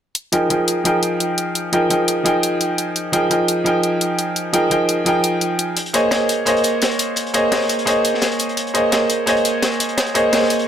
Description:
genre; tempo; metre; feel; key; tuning
liquid drum and bass; 171 BPM; 4/4; swing 54% on 16ths; F minor; A4 = 439 Hz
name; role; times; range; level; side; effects
electronic hi-hat; drums; 0.1-10.6 s; none; -22 LUFS; left 1 dB; overdrive
bright concert grand piano; accompaniment; 0.3-10.7 s; F3 to G5; -16 LUFS; equal; low-pass filter, digital delay
crunchy breakbeat drum kit; drums; 5.8-10.7 s; hi-hat, snare drum; -23 LUFS; left 1 dB; high-pass filter on hats, high-pass filter on snare, high-pass filter on room
room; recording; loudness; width
moderate lush hall reverb, RT60 1.8 s, small room ambience; none; -16 LUFS; side -9 dB against mid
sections
0.1-10.7 A section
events
none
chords
0.1 Fm11; 5.8 Bbm11

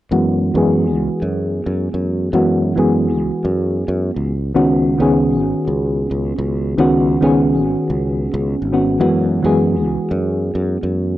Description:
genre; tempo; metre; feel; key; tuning
sunset chillout; 108 BPM; 4/4; swing 58% on 16ths; unclear; A4 = 439 Hz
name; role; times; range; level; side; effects
mellow FM electric piano; accompaniment; 0.1-11.2 s; D#3 to G#4; -16 LUFS; equal; chorus, auto-pan, low-pass filter, analog delay
sustaining fretless electric bass; bass; 0.1-11.2 s; G#1 to F#2; -20 LUFS; equal; none
room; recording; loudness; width
light reverb; dry, gritty hardware recording; -15 LUFS; side -15 dB against mid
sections
0.1-11.2 A section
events
filter sweep on FM electric piano 0.1-11.2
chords
0.1 F#9sus4; 4.3 C#9sus4; 9.0 F#9sus4

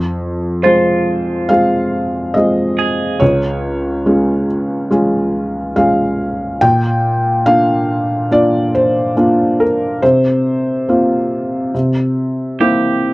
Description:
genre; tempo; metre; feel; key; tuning
acoustic folk-pop ballad; 70 BPM; 4/4; straight; F minor; A4 = 440 Hz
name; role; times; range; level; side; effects
felt-muted upright piano; melody; 0.0-13.1 s; Db2 to G5; -13 LUFS; equal; none
electric guitar through a small old amp; arpeggios; 0.6-3.6, 12.6-13.1 s; F4 to Ab4; -21 LUFS; right 4 dB; tremolo
room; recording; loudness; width
light reverb; dry, close 1970s-style studio recording; -12 LUFS; side -20 dB against mid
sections
0.0-13.1 A section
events
none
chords
0.0 Fm; 3.2 Db; 6.6 Bb; 10.0 C7sus4; 11.7 C7

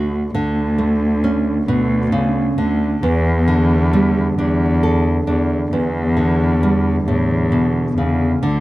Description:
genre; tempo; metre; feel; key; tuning
acoustic folk-pop ballad; 45 BPM (dotted quarters); 6/8; straight; unclear; A4 = 440 Hz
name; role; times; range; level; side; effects
nylon-string guitar; accompaniment; 0.0-8.6 s; E2 to A4; -18 LUFS; right 1 dB; none
warm cello; bass; 0.0-8.6 s; D2 to E2; -17 LUFS; equal; none
room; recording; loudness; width
little or no reverb; dark, warm production; -15 LUFS; side -17 dB against mid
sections
0.0-8.6 A section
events
none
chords
0.0 Dmaj7(no3); 3.0 A7sus4/E

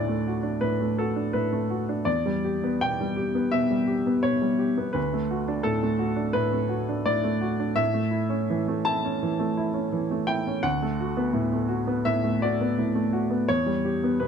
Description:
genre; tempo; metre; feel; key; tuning
neoclassical minimalist piano; 84 BPM; 4/4; rubato; unclear; A4 = 440 Hz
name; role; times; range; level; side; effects
clear baby grand piano; solo; 0.0-14.3 s; D2 to A5; -23 LUFS; equal; none
room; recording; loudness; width
light reverb; dark, warm production; -23 LUFS; side -7 dB against mid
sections
0.0-14.3 A section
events
none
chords
0.0 D6; 2.1 Em7; 5.0 D6; 7.8 A; 10.7 D6; 13.5 Em

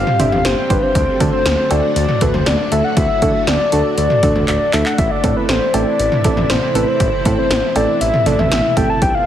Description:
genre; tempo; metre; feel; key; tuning
synth-pop; 119 BPM; 4/4; straight; A minor; A4 = 441 Hz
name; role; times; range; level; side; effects
soft octave-layered synth lead; melody; 0.0-9.3 s; B4 to A5; -17 LUFS; left 2 dB; chorus, slapback echo, shimmer reverb
string machine, full ensemble; sustained chords; 0.0-9.3 s; B2 to G4; -24 LUFS; equal; ensemble chorus, shimmer reverb
smooth synth bass; bass; 0.0-9.1 s; G1 to D3; -20 LUFS; equal; none
80s electronic pad drums; drums; 0.1-9.1 s; cowbell, handclaps, hi-hat, kick drum, snare drum, toms; -19 LUFS; equal; gated reverb on snare and toms
soft round pluck; accompaniment; 0.2-8.9 s; A3 to C5; -21 LUFS; right 3 dB; chorus, shimmer reverb
room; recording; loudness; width
moderate concert hall reverb, RT60 2.0 s; heavily compressed radio sound, multiband compression; -13 LUFS; side -10 dB against mid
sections
0.0-9.3 A section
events
drum fill 4.5-5.0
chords
0.0 Gsus4; 1.0 D; 5.0 Am

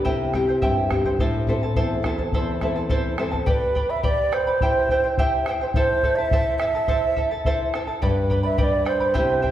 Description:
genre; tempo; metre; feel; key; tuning
andean folk, Andean ensemble; 106 BPM; 2/4; straight; A minor; A4 = 439 Hz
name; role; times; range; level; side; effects
charango; accompaniment; 0.0-9.5 s; E4 to B5; -25 LUFS; right 1 dB; none
nylon-string guitar; accompaniment; 0.0-3.5, 8.0-9.5 s; E2 to A4; -24 LUFS; left 1 dB; none
bombo; percussion; 0.1-9.5 s; none; -25 LUFS; equal; none
mellow large quena; melody; 3.5-9.5 s; B4 to E5; -22 LUFS; right 2 dB; none
room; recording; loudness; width
wet recital hall reverb, RT60 1.6 s; heard from further back in the room; -19 LUFS; side -12 dB against mid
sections
0.0-3.5 A section; 3.5-9.5 B section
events
none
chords
0.1 C; 1.2 Am; 3.5 G; 4.6 C; 5.8 Am; 8.0 G

